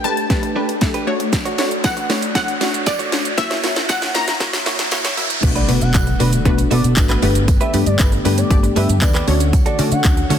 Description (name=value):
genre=dance-pop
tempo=117 BPM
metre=4/4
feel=straight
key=B minor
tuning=A4 = 440 Hz
part: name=analog pluck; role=melody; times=0.0-5.1 s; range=D5 to A#5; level=-24 LUFS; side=left 1 dB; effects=chorus, dub echo
part: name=wide unison pluck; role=accompaniment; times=0.0-10.4 s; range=A3 to E5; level=-22 LUFS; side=left 2 dB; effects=sidechain pumping
part: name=ensemble organ-string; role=sustained chords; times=0.0-10.4 s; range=D3 to C#5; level=-27 LUFS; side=equal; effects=phaser, ensemble chorus, sidechain pumping
part: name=direct-recorded clean electric guitar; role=riff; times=0.0-10.4 s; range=A3 to C#5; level=-26 LUFS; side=right 5 dB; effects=lush chorus
part: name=riser and impact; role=sound effects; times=0.0-7.5 s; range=none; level=-26 LUFS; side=equal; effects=none
part: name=house drum kit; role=drums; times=0.2-10.4 s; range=crash cymbal, handclaps, hi-hat, kick drum, shaker, snare drum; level=-18 LUFS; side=equal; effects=soft clipping on snare
part: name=tambourine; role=percussion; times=1.3-10.4 s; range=none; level=-36 LUFS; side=right 11 dB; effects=none
part: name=vintage muted fingered electric bass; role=bass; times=5.4-10.4 s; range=G1 to D3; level=-18 LUFS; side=equal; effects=sidechain pumping
part: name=expressive portamento lead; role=melody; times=5.6-10.3 s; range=B4 to F#5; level=-27 LUFS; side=left 1 dB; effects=chorus, dub echo
room=light reverb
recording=dense, heavily limited modern master, high-pass filter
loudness=-14 LUFS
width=side -9 dB against mid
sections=0.0-5.4 A section; 5.4-10.4 B section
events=build-up 0.0-5.4; drum fill 0.0-5.4; riser 0.0-5.4; filter sweep 0.0-5.4; drop 5.4-10.4; impact 5.4-7.5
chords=0.0 Gadd9; 1.1 Dmaj7; 3.4 F#7; 5.4 Bm7; 7.2 Gadd9; 9.3 Dmaj7